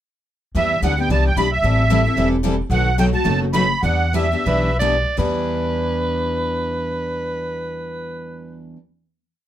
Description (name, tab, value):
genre	acoustic string swing (jazz manouche)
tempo	155-223 BPM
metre	4/4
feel	swing 56% on 8ths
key	E minor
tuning	A4 = 440 Hz
part	upright bass	bass	0.5-8.7 s	E1 to E2	-22 LUFS	equal	none
part	musette accordion	melody	0.6-4.8 s	E5 to B5	-20 LUFS	right 3 dB	none
part	picked steel-string acoustic guitar	accompaniment	0.6-8.8 s	B2 to A4	-24 LUFS	left 3 dB	none
part	picked steel-string acoustic guitar	accompaniment	0.6-8.8 s	B2 to B4	-27 LUFS	right 4 dB	none
part	growling soprano saxophone	second line	4.5-8.7 s	B4 to D5	-24 LUFS	right 1 dB	none
room	little or no reverb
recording	close, detailed microphones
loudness	-17 LUFS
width	side -12 dB against mid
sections	0.6-5.2 A section; 5.2-8.3 final chord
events	slowing down 2.7-5.2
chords	0.6 Em7; 1.6 Am7; 2.7 B7; 3.8 Em7